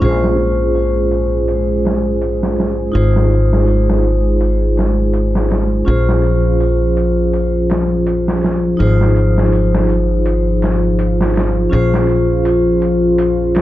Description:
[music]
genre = trip hop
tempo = 82 BPM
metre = 4/4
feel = swing 55% on 16ths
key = Bb minor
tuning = A4 = 440 Hz
[part]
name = vibraphone with medium hard mallets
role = accompaniment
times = 0.0-13.6 s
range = Db4 to C5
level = -17 LUFS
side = left 1 dB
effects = harmonic tremolo, vintage 12-bit sampler grit, tape echo
[part]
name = dark analog pad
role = sustained chords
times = 0.0-13.6 s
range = F3 to Ab4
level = -19 LUFS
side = equal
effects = chorus
[part]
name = upright bass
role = bass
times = 0.0-13.6 s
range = Ab1 to Bb1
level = -16 LUFS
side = equal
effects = none
[part]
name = trip hop sampler-style drum kit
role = drums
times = 0.0-13.6 s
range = hi-hat, snare drum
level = -22 LUFS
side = equal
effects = low-pass filter on hats, low-pass filter on snare, low-pass filter on room
[sound]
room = little or no reverb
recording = nothing above 7.5 kHz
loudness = -12 LUFS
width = side -14 dB against mid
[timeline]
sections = 0.0-13.6 A section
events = none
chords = 0.0 Bbm7; 2.9 Fm7/Ab; 5.9 Bbm7; 8.8 Fm7/Ab; 11.7 Bbm7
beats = | 0.02 0.75 1.48 2.21 | 2.94 3.67 4.41 5.14 | 5.87 6.60 7.33 8.06 | 8.80 9.53 10.26 10.99 | 11.72 12.46 13.19

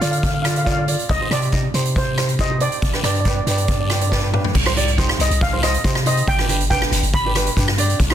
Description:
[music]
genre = calypso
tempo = 139 BPM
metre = 4/4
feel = straight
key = C minor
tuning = A4 = 440 Hz
[part]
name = steel pan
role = melody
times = 0.0-7.5 s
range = C5 to B5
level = -24 LUFS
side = right 1 dB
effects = plate reverb
[part]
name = tenor ukulele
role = accompaniment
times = 0.0-8.1 s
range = D4 to Eb5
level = -26 LUFS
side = right 3 dB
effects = plate reverb
[part]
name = punchy sub bass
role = bass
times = 0.0-8.1 s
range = G1 to D3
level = -21 LUFS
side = equal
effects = none
[part]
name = street-band drum kit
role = drums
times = 0.0-8.1 s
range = crash cymbal, hi-hat, kick drum, rim click, snare drum, toms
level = -20 LUFS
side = equal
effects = none
[part]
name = guiro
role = percussion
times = 0.0-8.1 s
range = none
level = -31 LUFS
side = left 7 dB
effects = none
[sound]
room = light reverb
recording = dense, heavily limited modern master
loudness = -16 LUFS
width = side -10 dB against mid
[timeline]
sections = 0.0-4.5 A section; 4.5-8.1 B section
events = drum fill 4.1-4.5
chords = 0.0 Ddim; 1.1 Cm; 2.8 G; 4.5 Cm; 6.3 G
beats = 0.23 0.66 | 1.09 1.52 1.96 2.39 | 2.82 3.25 3.69 4.12 | 4.55 4.98 5.41 5.84 | 6.27 6.70 7.13 7.57 | 8.00

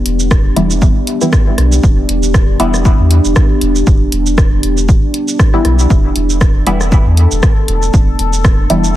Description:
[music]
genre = dub techno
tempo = 118 BPM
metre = 4/4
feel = swing 56% on 16ths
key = E minor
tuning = A4 = 440 Hz
[part]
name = deep dark ambient pad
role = sustained chords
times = 0.0-9.0 s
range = B3 to A4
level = -18 LUFS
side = equal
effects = chorus, built-in reverb, sidechain pumping
[part]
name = soft dub sub bass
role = bass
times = 0.1-9.0 s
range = E1 to E2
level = -14 LUFS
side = equal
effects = sidechain pumping
[part]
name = deep house drum kit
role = drums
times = 0.1-8.9 s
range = hi-hat, rim click, shaker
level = -20 LUFS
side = equal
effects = soft clipping on snare
[part]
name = electronic kick drum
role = drums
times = 0.3-8.6 s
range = none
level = -10 LUFS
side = equal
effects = none
[part]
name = filtered dub chord stab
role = stabs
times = 0.6-8.9 s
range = E3 to E4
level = -17 LUFS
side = left 1 dB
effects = chorus, phaser, sidechain pumping, dub echo
[sound]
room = digital ambience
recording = dense, heavily limited modern master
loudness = -9 LUFS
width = side -14 dB against mid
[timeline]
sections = 0.0-9.0 A section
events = none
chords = 0.0 Em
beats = 0.31 0.82 1.33 | 1.84 2.34 2.85 3.36 | 3.87 4.38 4.89 5.39 | 5.90 6.41 6.92 7.43 | 7.94 8.45 8.95

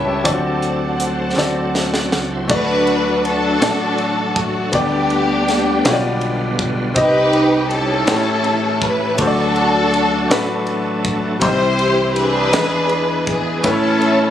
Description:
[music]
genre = slow gospel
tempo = 54 BPM (dotted quarters)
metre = 6/8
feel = straight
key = unclear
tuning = A4 = 440 Hz
[part]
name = clear baby grand piano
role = accompaniment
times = 0.0-14.3 s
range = A2 to C#6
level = -20 LUFS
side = left 2 dB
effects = none
[part]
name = bright tonewheel organ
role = sustained chords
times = 0.0-14.3 s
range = D3 to G5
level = -24 LUFS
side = right 3 dB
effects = slow rotary speaker, chorus vibrato
[part]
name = warm studio string section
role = sustained chords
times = 0.0-2.5 s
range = C5 to A5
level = -28 LUFS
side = right 2 dB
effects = none
[part]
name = fingered electric bass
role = bass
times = 0.0-14.3 s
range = A1 to E2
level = -26 LUFS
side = equal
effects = none
[part]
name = crisp fusion drum kit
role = drums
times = 0.3-14.2 s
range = crash cymbal, hi-hat, kick drum, ride cymbal, rim click, snare drum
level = -23 LUFS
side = equal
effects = none
[part]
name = warm studio string section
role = melody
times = 2.5-14.3 s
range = B3 to C5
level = -18 LUFS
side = equal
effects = tape echo
[sound]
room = light reverb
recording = recorded on a phone in the room, club ambience, compression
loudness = -15 LUFS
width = side -10 dB against mid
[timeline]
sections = 0.0-2.5 A section; 2.5-14.3 B section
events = drum fill 1.4-2.5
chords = 0.3 D7; 2.5 D; 4.7 G/D; 5.8 G7/B; 7.0 Cm; 8.1 A7; 9.2 D; 11.4 C; 12.5 E7; 13.6 A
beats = | 0.26 1.38 | 2.49 3.61 | 4.73 5.84 | 6.96 8.07 | 9.19 10.30 | 11.42 12.53 | 13.64

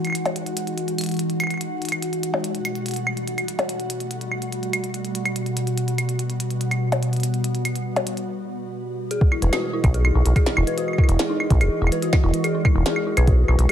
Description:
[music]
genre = IDM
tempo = 144 BPM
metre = 4/4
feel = straight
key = unclear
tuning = A4 = 438 Hz
[part]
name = glassy FM pad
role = sustained chords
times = 0.0-13.7 s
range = B2 to D#5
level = -26 LUFS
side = right 1 dB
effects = ensemble chorus, built-in reverb
[part]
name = glitchy drum kit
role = drums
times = 0.0-13.7 s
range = claves, hi-hat, percussion blips, snare drum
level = -26 LUFS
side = equal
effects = overdrive
[part]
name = bubbling stepped-filter texture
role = texture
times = 0.0-8.3 s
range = F#4 to F#5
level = -32 LUFS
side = left 2 dB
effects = chorus, built-in reverb, sidechain pumping
[part]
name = dark detuned synth bell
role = arpeggios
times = 9.1-13.7 s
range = D#4 to B4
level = -25 LUFS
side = left 2 dB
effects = chorus, phaser, dub echo
[part]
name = electronic kick drum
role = drums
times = 9.2-13.4 s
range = none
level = -18 LUFS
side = equal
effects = overdrive
[part]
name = deep acid bass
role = bass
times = 9.4-13.7 s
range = E1 to B1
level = -18 LUFS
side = equal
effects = none
[sound]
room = light reverb, digital ambience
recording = none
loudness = -20 LUFS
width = side -10 dB against mid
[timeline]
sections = 0.0-9.1 A section; 9.1-13.7 B section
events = break 8.3-9.1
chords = 0.0 Emaj9; 2.4 Gmaj9; 9.1 Emaj9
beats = 0.36 | 0.78 1.19 1.61 2.03 | 2.44 2.86 3.28 3.69 | 4.11 4.53 4.94 5.36 | 5.78 6.19 6.61 7.03 | 7.44 7.86 8.28 8.69 | 9.11 9.53 9.94 10.36 | 10.78 11.19 11.61 12.03 | 12.44 12.86 13.28 13.69

